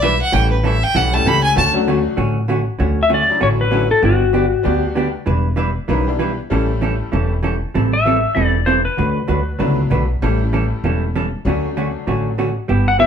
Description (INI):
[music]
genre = country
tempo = 194 BPM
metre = 4/4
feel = swing 61% on 8ths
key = D major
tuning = A4 = 440 Hz
[part]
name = rich fiddle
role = second line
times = 0.0-1.7 s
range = B4 to B5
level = -17 LUFS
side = equal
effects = none
[part]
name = vintage hollow-body jazz guitar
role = accompaniment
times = 0.0-13.1 s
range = D3 to B4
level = -20 LUFS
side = right 3 dB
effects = none
[part]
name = upright bass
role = bass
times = 0.0-13.1 s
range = E1 to D2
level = -19 LUFS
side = equal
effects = none
[part]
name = tack piano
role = accompaniment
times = 1.1-7.4, 9.6-12.3 s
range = F#3 to G4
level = -24 LUFS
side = left 5 dB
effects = none
[part]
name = clean lap steel guitar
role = melody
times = 3.0-5.1, 7.9-9.9, 12.9-13.1 s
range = F#4 to F#5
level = -16 LUFS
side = left 4 dB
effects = none
[sound]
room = moderate studio reverb, RT60 0.7 s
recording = band playing live in one room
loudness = -15 LUFS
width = side -8 dB against mid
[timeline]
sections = 0.0-2.8 A section; 2.8-13.1 B section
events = fiddle solo 0.0-2.8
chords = 0.3 A7; 1.6 Dmaj7; 2.8 Dmaj9; 4.0 Gmaj7; 5.3 Em7; 6.5 A7; 7.7 Am7; 9.0 D69; 10.2 A7; 11.4 Dmaj7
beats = 0.02 | 0.33 0.64 0.94 1.25 | 1.56 1.87 2.18 2.49 | 2.79 3.10 3.41 3.72 | 4.03 4.34 4.65 4.96 | 5.27 5.58 5.88 6.19 | 6.50 6.81 7.12 7.43 | 7.74 8.05 8.36 8.67 | 8.98 9.29 9.59 9.90 | 10.21 10.52 10.83 11.14 | 11.45 11.76 12.07 12.38 | 12.69 13.00